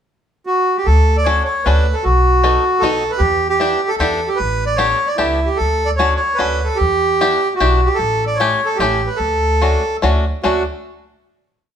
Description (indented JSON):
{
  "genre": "musette waltz",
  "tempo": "150 BPM",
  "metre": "3/4",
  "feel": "rubato",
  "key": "D major",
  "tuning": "A4 = 440 Hz",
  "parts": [
    { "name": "accordion", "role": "melody", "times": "0.5-10.6 s", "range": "E4 to D5", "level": "-16 LUFS", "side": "right 1 dB", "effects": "none" },
    { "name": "upright bass", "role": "bass", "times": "0.9-10.6 s", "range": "A1 to E2", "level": "-18 LUFS", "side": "equal", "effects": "none" },
    { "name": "bluegrass banjo", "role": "accompaniment", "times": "1.3-10.6 s", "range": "A3 to A4", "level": "-20 LUFS", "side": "left 3 dB", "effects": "none" }
  ],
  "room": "moderate stone room reverb, RT60 1.1 s",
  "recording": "band playing live in one room",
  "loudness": "-14 LUFS",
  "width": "side -8 dB against mid",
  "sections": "0.0-0.9 pickup bar; 0.9-10.4 A section; 10.4-11.7 final chord",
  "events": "none",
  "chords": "0.0 N.C.; 0.9 Dmaj7; 2.1 B7; 3.2 Em7; 4.4 A9sus4; 5.6 Dmaj7; 6.8 Em7; 8.0 A7; 9.2 Dmaj7"
}